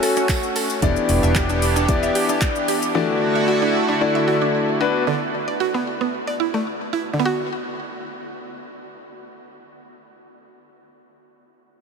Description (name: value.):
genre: dance-pop.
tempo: 113 BPM.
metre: 4/4.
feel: straight.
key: B minor.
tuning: A4 = 441 Hz.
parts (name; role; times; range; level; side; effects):
warm grand piano; accompaniment; 0.0-5.0 s; A3 to D5; -23 LUFS; left 5 dB; sidechain pumping.
chorused pulse-width pad; sustained chords; 0.0-5.1 s; D3 to G4; -23 LUFS; right 2 dB; lush chorus, sidechain pumping.
mallet-like synth pluck; arpeggios; 0.0-11.2 s; D3 to E5; -25 LUFS; right 3 dB; chorus, sidechain pumping, ping-pong delay.
smooth R&B drum kit; drums; 0.0-2.9 s; handclaps, hi-hat, kick drum, shaker; -25 LUFS; equal; none.
tambourine; percussion; 0.0-0.8 s; none; -38 LUFS; right 10 dB; none.
vintage muted fingered electric bass; bass; 0.8-2.1 s; E1; -22 LUFS; right 1 dB; sidechain pumping.
room: wet huge ambient reverb, RT60 9.1 s.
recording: dreamy mix soaked in reverb.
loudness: -18 LUFS.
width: side -5 dB against mid.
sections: 0.0-7.2 A section; 7.2-11.4 B section.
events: none.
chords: 0.0 F#m; 0.8 Em7; 2.9 Dadd9; 4.8 Bm; 6.1 Asus4; 7.2 Bm.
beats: 0.29 | 0.82 1.35 1.89 2.42 | 2.95 3.48 4.01 4.54 | 5.07 5.60 6.13 6.67 | 7.20 7.73 8.26 8.79 | 9.32 9.85 10.38 10.91.